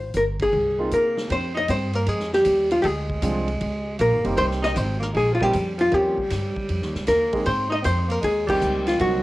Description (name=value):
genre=jazz, small-group swing and bop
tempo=156 BPM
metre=4/4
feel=swing 66% on 8ths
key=unclear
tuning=A4 = 440 Hz
part: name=archtop guitar, miked and amplified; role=melody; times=0.0-9.2 s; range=F4 to Eb5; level=-21 LUFS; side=left 1 dB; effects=cassette tape
part: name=upright bass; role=bass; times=0.0-9.2 s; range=F1 to C3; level=-27 LUFS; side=equal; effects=none
part: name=swinging big-band drum kit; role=drums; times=0.1-9.1 s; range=crash cymbal, hi-hat, kick drum, ride cymbal, snare drum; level=-34 LUFS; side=right 1 dB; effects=none
part: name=warm grand piano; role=accompaniment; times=0.8-0.9, 3.2-9.2 s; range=F3 to Ab4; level=-27 LUFS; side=right 2 dB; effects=cassette tape
part: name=growling alto saxophone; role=second line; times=0.9-9.2 s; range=F3 to Eb4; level=-31 LUFS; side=right 1 dB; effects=cassette tape
room=light reverb, studio reverb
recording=home recording on cassette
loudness=-20 LUFS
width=side -17 dB against mid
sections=0.0-1.3 A section; 1.3-9.2 B section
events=band accent 0.3, 8.4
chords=0.0 Abadd9; 1.3 Eb69; 2.8 Dm7b5; 3.6 Dbadd9; 4.4 Cm7; 5.9 Eb13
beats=0.14 0.53 0.91 | 1.30 1.68 2.07 2.46 | 2.84 3.23 3.61 4.00 | 4.38 4.76 5.15 5.54 | 5.92 6.31 6.69 7.08 | 7.46 7.85 8.23 8.62 | 9.00